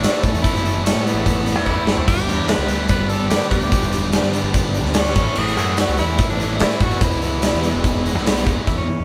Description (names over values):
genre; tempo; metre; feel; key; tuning
classic rock; 146 BPM; 4/4; straight; unclear; A4 = 439 Hz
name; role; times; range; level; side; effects
raspy tenor saxophone; melody; 0.0-9.0 s; B3 to B4; -28 LUFS; equal; none
bright tonewheel organ; sustained chords; 0.0-8.7 s; G3 to C#5; -36 LUFS; equal; none
crunchy overdriven guitar; riff; 0.0-8.7 s; E2 to A3; -30 LUFS; equal; none
sludgy distorted guitar; riff; 0.0-9.0 s; E2 to A4; -28 LUFS; equal; overdrive
growling fingered electric bass; bass; 0.0-9.0 s; E1 to E3; -26 LUFS; equal; overdrive
big rock drum kit; drums; 0.0-8.8 s; crash cymbal, hi-hat, kick drum, snare drum, toms; -22 LUFS; equal; none
room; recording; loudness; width
light reverb; band playing live in one room; -19 LUFS; mono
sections
0.0-8.7 A section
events
drum fill 1.7-2.1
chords
0.0 A; 2.1 G; 5.2 A; 7.0 E